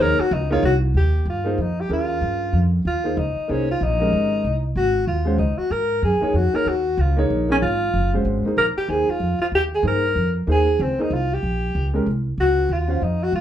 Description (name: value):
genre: modal jazz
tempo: 189 BPM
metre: 3/4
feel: swing 62% on 8ths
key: Bb minor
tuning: A4 = 440 Hz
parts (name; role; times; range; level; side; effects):
- mellow alto saxophone; melody; 0.0-13.4 s; C4 to Bb4; -21 LUFS; left 1 dB; none
- warm grand piano; accompaniment; 0.0-13.0 s; Ab3 to F5; -24 LUFS; equal; none
- upright bass; bass; 0.0-13.4 s; Gb1 to Ab2; -22 LUFS; equal; none
room: wet club reverb, RT60 0.6 s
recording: heard from further back in the room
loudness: -18 LUFS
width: side -10 dB against mid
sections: 0.9-13.4 A section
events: none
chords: 0.0 Ab9sus4; 0.9 Bb13sus4; 4.8 Ab13sus4; 8.6 Bb13sus4; 12.4 Ab7sus4 (rootless)